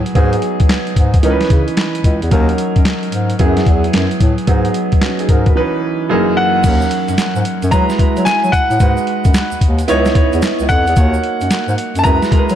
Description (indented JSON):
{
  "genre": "R&B, new jack swing",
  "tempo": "111 BPM",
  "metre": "4/4",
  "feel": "swing 65% on 16ths",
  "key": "C# dorian",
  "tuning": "A4 = 440 Hz",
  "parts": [
    { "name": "warm baby grand piano", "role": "accompaniment", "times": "0.0-12.6 s", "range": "F#2 to C#5", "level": "-17 LUFS", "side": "right 2 dB", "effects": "none" },
    { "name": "boom bap sampler-style drum kit", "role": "drums", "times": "0.1-12.6 s", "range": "crash cymbal, handclaps, hi-hat, kick drum, snare drum", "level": "-14 LUFS", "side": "equal", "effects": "none" },
    { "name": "warm bass clarinet", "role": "bass", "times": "0.2-12.6 s", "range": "C#2 to F#3", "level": "-18 LUFS", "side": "equal", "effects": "none" },
    { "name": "clear grand piano", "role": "melody", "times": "6.4-12.6 s", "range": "F#5 to A#5", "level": "-17 LUFS", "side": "equal", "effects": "none" },
    { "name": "egg shaker", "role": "percussion", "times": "6.6-12.6 s", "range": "none", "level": "-37 LUFS", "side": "right 6 dB", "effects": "none" }
  ],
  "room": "light reverb, small room ambience",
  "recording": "dark, warm production",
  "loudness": "-12 LUFS",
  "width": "side -10 dB against mid",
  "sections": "0.0-6.6 A section; 6.6-12.6 B section",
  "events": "none",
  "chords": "0.2 G#m7; 1.2 C#m9; 2.3 D#m7; 3.4 F#9sus4; 4.5 G#m7; 5.6 C#m9; 6.1 F#13; 6.6 D#m7; 7.7 F#9sus4; 8.8 G#m7; 9.9 C#m9; 11.0 D#m7; 12.0 F#9sus4",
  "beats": "| 0.15 0.69 1.24 1.77 | 2.32 2.86 3.40 3.94 | 4.48 5.02 5.56 6.10 | 6.64 7.18 7.72 8.26 | 8.80 9.34 9.88 10.42 | 10.96 11.51 12.05"
}